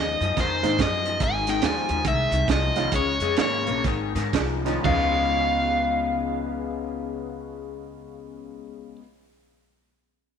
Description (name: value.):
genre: electric blues shuffle.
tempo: 115-144 BPM.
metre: 4/4.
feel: swing 63% on 8ths.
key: Db mixolydian.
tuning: A4 = 439 Hz.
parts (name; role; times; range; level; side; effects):
biting overdriven guitar; melody; 0.0-9.0 s; C5 to Ab5; -25 LUFS; equal; none.
electric guitar through a small old amp; riff; 0.0-9.0 s; Ab2 to F4; -28 LUFS; left 12 dB; lush chorus.
upright bass; bass; 0.0-9.0 s; Ab1 to Ab2; -30 LUFS; right 1 dB; none.
crunchy breakbeat drum kit; drums; 0.2-5.0 s; crash cymbal, hi-hat, kick drum, snare drum, toms; -28 LUFS; right 6 dB; none.
honky-tonk upright piano; accompaniment; 0.6-9.0 s; Db3 to Gb4; -33 LUFS; right 11 dB; none.
room: moderate echo chamber reverb, RT60 1.9 s, small room ambience.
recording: 1960s-style stereo with parts hard left and right, faint mains hum.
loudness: -21 LUFS.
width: side -7 dB against mid.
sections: 0.0-4.8 A section; 4.8-9.0 B section.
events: slowing down 1.2-4.8.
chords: 0.0 Ab7; 2.9 Db7; 3.8 Ab; 4.8 Db7.